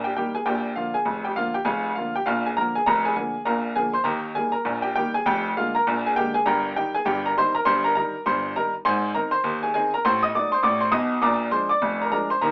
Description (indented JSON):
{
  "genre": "ragtime piano",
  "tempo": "100 BPM",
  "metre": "2/4",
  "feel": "swing 59% on 16ths",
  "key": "unclear",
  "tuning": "A4 = 440 Hz",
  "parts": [
    { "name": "clear upright piano", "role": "solo", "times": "0.0-12.5 s", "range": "F1 to Eb6", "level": "-23 LUFS", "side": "equal", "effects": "none" }
  ],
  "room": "moderate booth ambience, RT60 0.2 s",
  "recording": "AM radio sound",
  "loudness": "-23 LUFS",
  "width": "mono",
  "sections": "0.0-12.5 A section",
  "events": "none",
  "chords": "0.5 Bb7; 1.7 Bb7/F; 4.1 Eb; 5.3 Bb7/F; 6.5 Eb/G; 8.8 Ab; 10.0 Adim7; 11.2 Bb7"
}